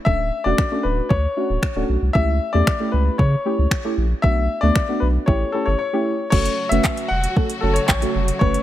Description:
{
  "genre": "dance-pop",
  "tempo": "115 BPM",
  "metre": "4/4",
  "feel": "straight",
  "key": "unclear",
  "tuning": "A4 = 442 Hz",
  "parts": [
    { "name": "clear concert grand piano", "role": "melody", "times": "0.0-8.6 s", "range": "A4 to F#5", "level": "-23 LUFS", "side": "left 3 dB", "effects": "none" },
    { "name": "deep mellow chord stab", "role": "accompaniment", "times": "0.1-8.6 s", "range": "A3 to B4", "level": "-24 LUFS", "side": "right 1 dB", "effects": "chorus, sidechain pumping" },
    { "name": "warm sub bass", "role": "bass", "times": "0.1-8.6 s", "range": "D1 to C#3", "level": "-20 LUFS", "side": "equal", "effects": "sidechain pumping" },
    { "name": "smooth R&B drum kit", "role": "drums", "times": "0.1-8.6 s", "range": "crash cymbal, finger snaps, handclaps, hi-hat, kick drum", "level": "-20 LUFS", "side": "equal", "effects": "overdrive" },
    { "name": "clear studio string section", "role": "sustained chords", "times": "6.3-8.6 s", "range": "C#3 to F#4", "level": "-30 LUFS", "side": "left 2 dB", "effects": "sidechain pumping" }
  ],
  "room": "little or no reverb",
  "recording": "none",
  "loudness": "-17 LUFS",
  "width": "side -13 dB against mid",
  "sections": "0.0-6.3 A section; 6.3-8.6 B section",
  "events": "break 5.8-6.3",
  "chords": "0.0 Dmaj7; 2.1 A7/C#; 4.2 Bm7; 5.3 A7; 6.3 F#m"
}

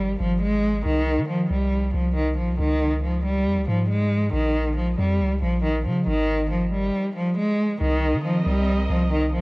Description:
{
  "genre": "hip hop, drill",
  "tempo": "138 BPM",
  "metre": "4/4",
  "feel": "half-time",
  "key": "C phrygian",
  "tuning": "A4 = 440 Hz",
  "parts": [
    { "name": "dark cello", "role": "melody", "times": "0.0-9.4 s", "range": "Eb3 to Ab3", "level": "-22 LUFS", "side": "equal", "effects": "none" },
    { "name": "long sustained 808-style bass", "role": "bass", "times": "0.0-9.4 s", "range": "Ab1 to Eb3", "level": "-24 LUFS", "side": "equal", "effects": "none" },
    { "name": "dark studio string section", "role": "sustained chords", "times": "7.8-9.4 s", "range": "C4 to Eb5", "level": "-31 LUFS", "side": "right 2 dB", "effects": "none" }
  ],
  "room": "light reverb, small room ambience",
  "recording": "worn, warbling old tape, cassette tape, warbly pitch drift",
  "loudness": "-20 LUFS",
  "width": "side -26 dB against mid",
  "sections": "0.0-7.8 A section; 7.8-9.4 B section",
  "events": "none",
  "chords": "0.0 Ab5; 0.9 Cm; 2.6 Dbadd9; 4.3 Bbm; 6.1 Ab5; 7.8 Cm7"
}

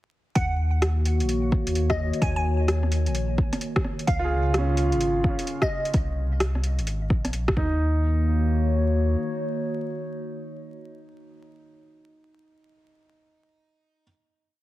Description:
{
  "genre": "future garage",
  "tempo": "129 BPM",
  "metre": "4/4",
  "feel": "swing 64% on 16ths",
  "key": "Eb dorian",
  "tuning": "A4 = 441 Hz",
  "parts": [
    { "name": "glassy wavetable pluck", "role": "melody", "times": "0.4-5.9 s", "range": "Eb5 to Ab5", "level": "-32 LUFS", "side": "equal", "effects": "chorus, tape echo" },
    { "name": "warbly tape-like pad", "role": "sustained chords", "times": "0.8-11.5 s", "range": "Db3 to Db5", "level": "-28 LUFS", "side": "left 1 dB", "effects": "chorus, built-in reverb, sidechain pumping" },
    { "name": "warm sub bass", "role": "bass", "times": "0.4-9.2 s", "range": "Ab1 to Eb2", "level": "-24 LUFS", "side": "equal", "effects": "tube saturation, sidechain pumping" },
    { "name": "deep house drum kit", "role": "drums", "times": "0.4-7.5 s", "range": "hi-hat, rim click", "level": "-28 LUFS", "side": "equal", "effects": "overdrive, vintage 12-bit sampler grit" },
    { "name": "electronic kick drum", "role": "drums", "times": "0.4-7.7 s", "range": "none", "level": "-25 LUFS", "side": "equal", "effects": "overdrive, vintage 12-bit sampler grit" },
    { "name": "bright upright piano", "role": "accompaniment", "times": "4.2-14.0 s", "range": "Db4 to Ab4", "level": "-32 LUFS", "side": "right 2 dB", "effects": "vintage 12-bit sampler grit, sidechain pumping, analog delay" }
  ],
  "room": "light reverb",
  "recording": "heavily compressed radio sound, vinyl crackle",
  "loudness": "-22 LUFS",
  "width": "side -16 dB against mid",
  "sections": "0.4-7.8 groove; 7.8-11.5 final chord",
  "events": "none",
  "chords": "0.4 Ebm7; 4.1 Db6; 5.9 Ab/C; 7.6 Eb5; 7.8 Ebm7"
}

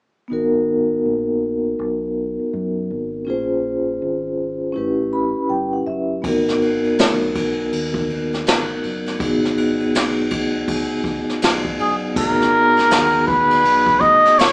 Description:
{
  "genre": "hip hop, jazz-hop",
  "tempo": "81 BPM",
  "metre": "4/4",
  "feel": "swing 62% on 16ths",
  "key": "unclear",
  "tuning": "A4 = 437 Hz",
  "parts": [
    { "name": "vibraphone with soft mallets", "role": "accompaniment", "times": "0.3-14.5 s", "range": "B3 to B5", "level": "-19 LUFS", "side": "equal", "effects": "none" },
    { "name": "deep dub fingered electric bass", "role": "bass", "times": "0.3-14.5 s", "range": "F#1 to F#2", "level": "-33 LUFS", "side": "equal", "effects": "none" },
    { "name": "jazz brush drum kit", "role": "drums", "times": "6.2-14.5 s", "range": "crash cymbal, hi-hat, kick drum, ride cymbal, snare drum", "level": "-21 LUFS", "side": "equal", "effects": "none" },
    { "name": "trumpet with cup mute", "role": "melody", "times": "11.8-14.5 s", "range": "G#4 to D#5", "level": "-13 LUFS", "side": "equal", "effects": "none" }
  ],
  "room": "moderate large studio reverb, RT60 1.1 s",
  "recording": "band playing live in one room, small speaker sound",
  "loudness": "-16 LUFS",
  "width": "side -28 dB against mid",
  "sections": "0.3-12.2 A section; 12.2-14.5 B section",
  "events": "vibraphone fill 4.8-6.2",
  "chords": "0.3 G#m7; 3.3 A#m9; 4.8 A9; 6.2 G#m7"
}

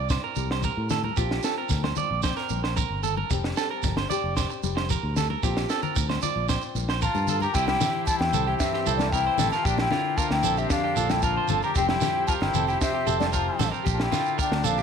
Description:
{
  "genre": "highlife guitar band",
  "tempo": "114 BPM",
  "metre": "4/4",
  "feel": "straight",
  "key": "unclear",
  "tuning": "A4 = 440 Hz",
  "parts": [
    { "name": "nylon-string guitar", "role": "accompaniment", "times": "0.0-14.8 s", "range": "F2 to G4", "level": "-34 LUFS", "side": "left 12 dB", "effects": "none" },
    { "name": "electric guitar at the edge of break-up", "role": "arpeggios", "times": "0.0-14.8 s", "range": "F4 to D5", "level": "-29 LUFS", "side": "right 11 dB", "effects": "slapback echo" },
    { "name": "fingered electric bass", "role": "bass", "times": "0.0-14.8 s", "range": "F1 to A2", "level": "-29 LUFS", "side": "left 1 dB", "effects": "none" },
    { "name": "compact cocktail drum kit", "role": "drums", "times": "0.1-14.6 s", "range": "crash cymbal, kick drum, snare drum", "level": "-30 LUFS", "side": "equal", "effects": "none" },
    { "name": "shekere", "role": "percussion", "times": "0.1-14.8 s", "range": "none", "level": "-33 LUFS", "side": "right 8 dB", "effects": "none" },
    { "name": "congas", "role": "percussion", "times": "0.4-14.8 s", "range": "none", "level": "-35 LUFS", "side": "left 11 dB", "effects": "none" },
    { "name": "mellow hollow silver concert flute", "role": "melody", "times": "7.0-14.8 s", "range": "D5 to Bb5", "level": "-27 LUFS", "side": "left 2 dB", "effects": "none" },
    { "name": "clear trumpet", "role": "second line", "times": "7.0-14.8 s", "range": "Bb3 to G4", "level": "-32 LUFS", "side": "left 12 dB", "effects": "none" },
    { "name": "combo organ", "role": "sustained chords", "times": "7.5-14.8 s", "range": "C4 to C5", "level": "-37 LUFS", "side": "right 1 dB", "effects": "none" }
  ],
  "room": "moderate echo chamber reverb, RT60 2.0 s, studio ambience",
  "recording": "1960s-style stereo with parts hard left and right",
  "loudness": "-22 LUFS",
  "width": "side -7 dB against mid",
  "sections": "0.0-7.5 A section; 7.5-14.8 B section",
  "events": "none",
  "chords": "0.0 C; 1.2 Bbadd9; 3.3 Fsus2; 5.4 Bbadd9; 7.5 C; 9.7 Bbadd9; 11.8 Fsus2; 13.9 Bbadd9"
}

